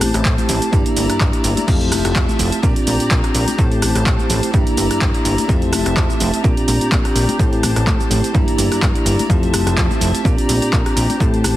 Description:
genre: filtered disco house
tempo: 126 BPM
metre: 4/4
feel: swing 55% on 16ths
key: unclear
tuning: A4 = 440 Hz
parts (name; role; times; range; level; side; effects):
- bell-like tine electric piano; accompaniment; 0.0-11.6 s; A3 to G4; -20 LUFS; equal; phaser, vintage 12-bit sampler grit, sidechain pumping, low-pass filter
- warm chamber string section; sustained chords; 0.0-11.6 s; F3 to Bb5; -25 LUFS; left 1 dB; vintage 12-bit sampler grit, sidechain pumping, low-pass filter
- plucky analog bass; bass; 0.0-11.5 s; F1 to Bb2; -20 LUFS; equal; sidechain pumping, low-pass filter
- punchy analog drum machine; drums; 0.0-11.5 s; crash cymbal, handclaps, hi-hat, rim click, shaker; -22 LUFS; right 1 dB; sidechain pumping on perc, sidechain pumping on hats, sidechain pumping on cymbals
- tambourine and congas; percussion; 0.2-11.4 s; none; -29 LUFS; left 2 dB; none
- electronic kick drum; drums; 0.3-11.3 s; none; -18 LUFS; equal; none
room: light reverb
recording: heavily compressed radio sound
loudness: -14 LUFS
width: side -14 dB against mid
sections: 0.0-11.6 A section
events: none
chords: 0.0 Am7; 0.7 Gm6; 1.7 Fmaj7; 2.6 Bb6; 3.6 Am7; 4.5 Gm6; 5.5 Fmaj7; 6.4 Bb6; 7.4 Am7; 8.3 Gm6; 9.3 Fmaj7; 10.3 Bb6

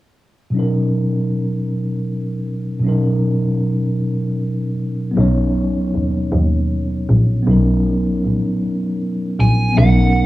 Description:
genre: slow six-eight R&B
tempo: 52 BPM (dotted quarters)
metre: 6/8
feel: straight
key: B major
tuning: A4 = 439 Hz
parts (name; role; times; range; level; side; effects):
- mellow tine electric piano; accompaniment; 0.5-10.3 s; B2 to C#5; -18 LUFS; equal; medium stereo tremolo, cassette tape, plate reverb
- warm double bass; bass; 5.2-10.3 s; A#1 to D#2; -16 LUFS; equal; none
- fuzz lead guitar; melody; 9.4-10.3 s; F#5 to G#5; -20 LUFS; right 3 dB; distortion, cassette tape, plate reverb
room: moderate studio reverb, RT60 0.7 s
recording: home recording on cassette, small room ambience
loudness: -16 LUFS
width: side -17 dB against mid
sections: 0.5-9.8 A section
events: none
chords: 0.5 Bmaj9

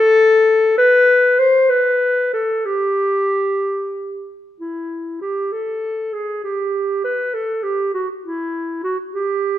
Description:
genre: classical, baroque-style fantasia for unaccompanied clarinet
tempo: 65 BPM (dotted quarters)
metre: 6/8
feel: rubato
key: G major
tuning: A4 = 442 Hz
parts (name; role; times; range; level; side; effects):
- warm clarinet; solo; 0.0-9.6 s; E4 to C5; -15 LUFS; left 1 dB; none
room: moderate recital hall reverb, RT60 1.4 s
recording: dark, warm production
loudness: -15 LUFS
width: side -12 dB against mid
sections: 0.0-4.6 A section; 4.6-9.6 A section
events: none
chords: none

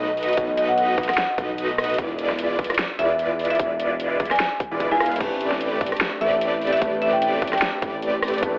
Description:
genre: future bass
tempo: 149 BPM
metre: 4/4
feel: swing 55% on 16ths, half-time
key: A minor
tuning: A4 = 440 Hz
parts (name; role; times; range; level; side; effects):
- airy dreamy lead; arpeggios; 0.0-8.6 s; D5 to F5; -29 LUFS; equal; chorus, sidechain pumping
- supersaw chords; riff; 0.0-8.6 s; G#3 to F5; -26 LUFS; equal; phaser, sidechain pumping
- fat analog bass; bass; 0.0-8.6 s; E1 to B1; -30 LUFS; equal; tube saturation, sidechain pumping
- dubstep drum kit; drums; 0.2-8.5 s; crash cymbal, hi-hat, rim click, snare drum; -25 LUFS; equal; none
- marimba with medium hard mallets; melody; 0.3-7.9 s; D#5 to G#5; -23 LUFS; equal; sidechain pumping
- electronic kick drum; drums; 0.4-8.5 s; none; -28 LUFS; equal; none
- felt-muted upright piano; accompaniment; 5.2-8.6 s; A3 to B4; -29 LUFS; equal; sidechain pumping
room: light reverb, digital ambience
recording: telephone sound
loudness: -19 LUFS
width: side -27 dB against mid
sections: 0.0-8.6 A section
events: none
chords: 0.0 B7; 2.0 E7b9; 5.2 Am11

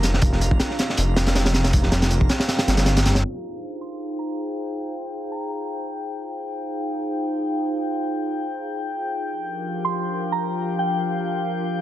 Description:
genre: drum and bass, jungle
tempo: 159 BPM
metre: 4/4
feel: swing 54% on 16ths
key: F dorian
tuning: A4 = 440 Hz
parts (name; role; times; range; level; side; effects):
- warbly tape-like pad; sustained chords; 0.0-11.8 s; F3 to F5; -27 LUFS; right 1 dB; chorus, built-in reverb, vintage 12-bit sampler grit
- detuned saw bass; bass; 0.0-3.2 s; F1 to G1; -20 LUFS; equal; none
- crunchy breakbeat drum kit; drums; 0.0-3.2 s; hi-hat, kick drum, snare drum; -20 LUFS; equal; none
- drifting glass-harmonics texture; texture; 0.0-11.8 s; G5 to Bb5; -33 LUFS; left 4 dB; chorus, built-in reverb
- soft synth bell; melody; 3.8-5.8, 9.8-11.3 s; G5 to C6; -28 LUFS; right 1 dB; chorus, phaser, dub echo
room: light reverb, small room ambience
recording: dense, heavily limited modern master, vinyl crackle, low-pass filter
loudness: -21 LUFS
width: side -13 dB against mid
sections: 0.0-3.2 A section; 3.2-11.8 B section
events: kick drops out 2.5-3.2; filter sweep 3.2-11.8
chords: 0.0 Bb6/F; 3.2 Fm7; 9.3 Bb6/F

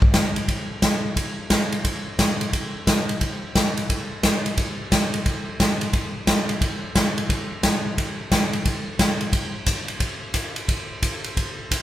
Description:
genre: country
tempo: 176 BPM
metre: 4/4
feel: swing 64% on 8ths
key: none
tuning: none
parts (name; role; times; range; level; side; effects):
- swinging big-band drum kit; drums; 0.0-11.8 s; hi-hat, kick drum, ride cymbal, snare drum; -20 LUFS; equal; none
room: wet large studio reverb, RT60 1.1 s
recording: band playing live in one room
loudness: -21 LUFS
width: side -13 dB against mid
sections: 0.0-9.3 A section; 9.3-11.8 B section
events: none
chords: none

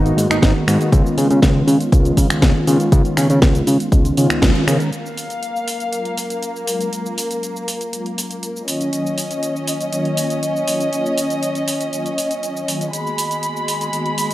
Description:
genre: nu-disco, nu disco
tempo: 120 BPM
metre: 4/4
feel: straight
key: F# major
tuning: A4 = 440 Hz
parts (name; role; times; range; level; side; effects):
- wide unison lead; melody; 0.0-0.5 s; D#4; -25 LUFS; right 2 dB; wide subtle chorus, tape echo
- mellow synth brass; accompaniment; 0.0-14.3 s; D#3 to A#4; -22 LUFS; equal; chorus, sidechain pumping, tape echo
- fat analog bass; bass; 0.0-4.8 s; G#1 to C#3; -16 LUFS; equal; none
- house drum kit; drums; 0.1-14.3 s; cabasa, finger snaps, hi-hat, snare drum; -22 LUFS; equal; none
- electronic kick drum; drums; 0.4-4.5 s; none; -15 LUFS; equal; none
- dark studio violin section; sustained chords; 4.9-14.3 s; G#3 to B5; -22 LUFS; equal; sidechain pumping, low-pass filter
room: light reverb, digital ambience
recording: dry, gritty hardware recording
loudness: -16 LUFS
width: side -15 dB against mid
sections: 0.0-4.9 A section; 4.9-14.3 B section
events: band accent 4.4; filter sweep on analog polysynth 4.9-14.3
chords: 0.0 G#m7; 0.9 C#9; 4.9 F#maj7; 8.7 D#m7; 12.9 G#m7

